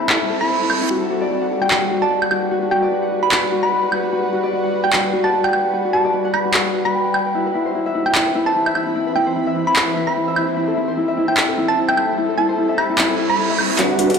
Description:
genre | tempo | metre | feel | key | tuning
future bass | 149 BPM | 4/4 | swing 56% on 16ths, half-time | G major | A4 = 439 Hz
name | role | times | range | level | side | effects
thumb-piano-like synth pluck | melody | 0.0-13.7 s | G5 to B5 | -22 LUFS | right 2 dB | chorus, phaser, cassette tape, ping-pong delay
shimmering ambient pad | sustained chords | 0.0-14.2 s | E3 to B5 | -24 LUFS | right 1 dB | chorus, built-in reverb
Celtic harp | arpeggios | 0.0-14.2 s | E4 to G5 | -20 LUFS | left 3 dB | low-pass filter, ping-pong delay
dubstep drum kit | drums | 0.1-14.2 s | handclaps, hi-hat, woodblock | -20 LUFS | right 1 dB | overdrive, low-pass filter on snare, low-pass filter on perc, low-pass filter on hats, low-pass filter on room
reverse cymbal and riser | sound effects | 0.2-0.9, 13.1-14.2 s | none | -26 LUFS | right 7 dB | none
supersaw chords | riff | 13.8-14.2 s | G3 to F#5 | -16 LUFS | right 3 dB | phaser, low-pass filter
warm 808-style bass | bass | 13.8-14.2 s | G1 | -36 LUFS | equal | none
room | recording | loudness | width
light reverb | played on a big sound system in a bare room, large studio reverb | -16 LUFS | side -6 dB against mid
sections
0.0-13.8 A section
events
reverse cymbal 0.2-0.9, 13.1-13.8; drum fill 13.8-14.2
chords
0.0 Am7; 0.9 Gmaj7; 7.3 Cmaj7; 10.6 Am7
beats
0.10 0.50 | 0.90 1.30 1.71 2.11 | 2.51 2.91 3.32 3.72 | 4.12 4.53 4.93 5.33 | 5.73 6.14 6.54 6.94 | 7.34 7.75 8.15 8.55 | 8.96 9.36 9.76 10.16 | 10.56 10.97 11.37 11.77 | 12.18 12.58 12.98 13.38 | 13.79

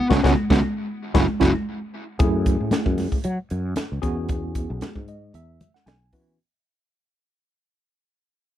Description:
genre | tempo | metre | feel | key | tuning
electric jazz fusion | 115 BPM | 4/4 | straight | F# minor | A4 = 437 Hz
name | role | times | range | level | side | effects
smooth overdriven lead guitar | melody | 0.0-1.5 s | B3 to F#4 | -26 LUFS | equal | tape echo
tine electric piano | accompaniment | 0.1-6.4 s | A3 to G#5 | -25 LUFS | right 1 dB | overdrive, fast stereo tremolo
sustaining fretless electric bass | bass | 0.1-6.4 s | F#1 to F#3 | -25 LUFS | equal | wide subtle chorus
crisp fusion drum kit | drums | 0.1-6.3 s | hi-hat, kick drum, snare drum | -23 LUFS | equal | none
congas | percussion | 0.1-6.2 s | none | -27 LUFS | left 1 dB | none
room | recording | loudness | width
little or no reverb | none | -20 LUFS | side -11 dB against mid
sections
0.0-2.2 A section; 2.2-6.4 B section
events
band accent 0.1-2.2; drum fill 1.7-2.2; fade-out 2.2-6.4; tine electric piano fill 4.8-6.4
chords
0.1 C#7sus4; 1.2 F#5; 2.2 F#m9; 4.0 E69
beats
| 0.11 0.63 1.15 1.67 | 2.19 2.72 3.24 3.76 | 4.29 4.81 5.33 5.86

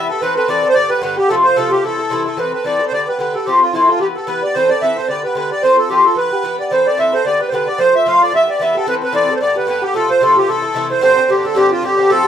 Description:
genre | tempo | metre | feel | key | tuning
celtic folk | 222 BPM | 4/4 | swing 56% on 8ths | A minor | A4 = 440 Hz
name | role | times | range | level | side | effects
accordion | melody | 0.0-12.3 s | E4 to F5 | -14 LUFS | right 1 dB | light tremolo tuning
Irish bouzouki | accompaniment | 0.0-12.3 s | G2 to C5 | -17 LUFS | left 2 dB | none
room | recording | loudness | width
moderate studio reverb, RT60 0.5 s | heard from further back in the room | -12 LUFS | side -9 dB against mid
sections
0.0-2.4 A section; 2.4-11.0 A section; 11.0-12.3 B section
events
none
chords
0.2 Amadd9; 0.8 G; 1.3 F; 1.8 Am; 2.4 Amadd9; 2.9 G; 3.5 F; 4.0 Em; 4.5 Amadd9; 5.1 G; 5.6 F; 6.2 Em; 6.7 Amadd9; 7.2 G; 7.8 F; 8.3 Em; 8.9 Amadd9; 9.4 G; 9.9 F; 10.5 Am; 11.0 Gsus4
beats
| 0.21 0.48 0.75 1.02 | 1.29 1.56 1.83 2.10 | 2.38 2.65 2.92 3.19 | 3.46 3.73 4.00 4.27 | 4.54 4.81 5.08 5.36 | 5.63 5.90 6.17 6.44 | 6.71 6.98 7.25 7.52 | 7.79 8.06 8.33 8.60 | 8.87 9.14 9.41 9.68 | 9.95 10.21 10.48 10.75 | 11.02 11.29 11.56 11.82 | 12.09

